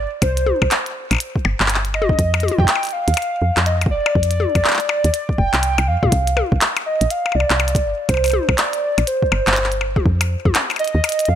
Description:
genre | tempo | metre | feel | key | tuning
IDM | 122 BPM | 4/4 | swing 62% on 16ths | C minor | A4 = 440 Hz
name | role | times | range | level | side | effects
warbly nostalgic lead | melody | 0.0-11.4 s | C5 to G5 | -21 LUFS | right 1 dB | chorus, tremolo, tape echo
woody FM bass | bass | 0.0-11.4 s | F1 to Bb2 | -19 LUFS | equal | none
electronic kick drum | drums | 0.2-10.5 s | none | -19 LUFS | equal | overdrive
glitchy drum kit | drums | 0.2-11.3 s | handclaps, hi-hat, percussion blips, toms | -20 LUFS | left 2 dB | overdrive
room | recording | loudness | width
light reverb, digital ambience | none | -16 LUFS | side -10 dB against mid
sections
0.0-11.4 A section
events
none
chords
0.0 C5; 2.2 Fsus2; 6.1 Csus2; 10.1 N.C.

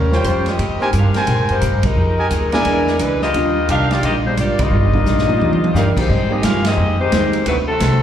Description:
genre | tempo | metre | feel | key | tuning
jazz, big band swing | 175 BPM | 4/4 | swing 63% on 8ths | Eb major | A4 = 440 Hz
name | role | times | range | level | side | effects
clear saxophone section | melody | 0.0-8.0 s | F#3 to F5 | -20 LUFS | left 3 dB | slapback echo
vintage hollow-body jazz guitar | accompaniment | 0.0-8.0 s | Ab2 to C5 | -25 LUFS | left 2 dB | slapback echo
upright bass | bass | 0.0-8.0 s | G1 to Bb2 | -18 LUFS | equal | none
warm grand piano | accompaniment | 0.1-7.3 s | G3 to C5 | -24 LUFS | right 3 dB | slapback echo
clear trumpet section | stabs | 0.1-5.9 s | Eb4 to Ab5 | -22 LUFS | right 1 dB | slapback echo
swinging big-band drum kit | drums | 0.1-7.9 s | crash cymbal, hi-hat, kick drum, ride cymbal, snare drum, toms | -22 LUFS | right 1 dB | none
clear trombone section | second line | 4.6-8.0 s | C3 to G4 | -24 LUFS | right 4 dB | slapback echo
room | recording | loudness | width
light reverb, studio reverb | live gig heard through the venue's PA, club reverb | -14 LUFS | side -10 dB against mid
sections
0.0-6.1 A section; 6.1-8.0 B section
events
band accent 1.8, 4.5, 6.6; drum fill 5.1-5.7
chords
0.0 Eb13; 0.6 Abmaj9; 2.0 Fm11; 2.7 E7#11; 3.3 Ebmaj9; 6.1 Abmaj7; 7.5 D13

